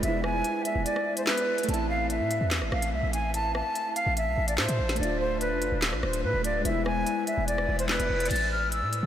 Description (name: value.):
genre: hip hop, drill.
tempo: 145 BPM.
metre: 4/4.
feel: half-time.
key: A harmonic minor.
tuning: A4 = 440 Hz.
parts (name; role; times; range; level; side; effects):
silver concert flute; melody; 0.0-9.1 s; B4 to A6; -28 LUFS; equal; diffuse ambient delay.
warbly lo-fi synth keys; accompaniment; 0.0-8.3 s; G#3 to F4; -33 LUFS; equal; chorus.
hard-hitting 808-style bass; bass; 0.0-9.1 s; D1 to A2; -30 LUFS; equal; none.
drill drum kit; drums; 0.0-9.0 s; crash cymbal, handclaps, hi-hat, rim click, snare drum; -33 LUFS; equal; none.
reverse cymbal; sound effects; 7.7-8.3 s; none; -40 LUFS; left 3 dB; none.
room: wet huge ambient reverb, RT60 7.6 s.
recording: dreamy mix soaked in reverb.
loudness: -25 LUFS.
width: side -10 dB against mid.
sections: 0.0-8.3 A section.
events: kick muted 0.9-1.7; reverse cymbal 7.7-8.3.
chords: 0.0 E; 1.7 Am; 5.0 Dm; 6.7 E; 8.3 A5.